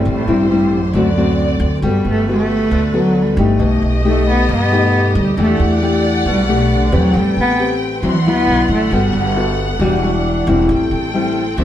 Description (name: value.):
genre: bossa nova.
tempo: 136 BPM.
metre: 4/4.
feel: straight.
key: G major.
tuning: A4 = 440 Hz.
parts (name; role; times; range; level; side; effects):
dark cello; melody; 0.0-9.2 s; F#2 to B3; -17 LUFS; right 1 dB; none.
nylon-string guitar; accompaniment; 0.0-11.6 s; A2 to B4; -17 LUFS; left 3 dB; none.
warm symphonic string section; sustained chords; 0.0-11.6 s; G3 to C6; -22 LUFS; equal; none.
upright bass; bass; 0.0-11.6 s; E1 to G2; -19 LUFS; right 1 dB; none.
room: wet studio reverb, RT60 0.8 s.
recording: heard from further back in the room.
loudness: -13 LUFS.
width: side -11 dB against mid.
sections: 0.0-1.8 A section; 1.8-11.6 B section.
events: cello solo 1.8-11.6.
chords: 0.1 Am7; 0.9 D7; 1.8 Gmaj9; 3.6 B7b13; 5.4 Em11; 7.1 Am9; 8.0 D9; 8.9 Gmaj9; 9.8 Em9; 10.7 Am7.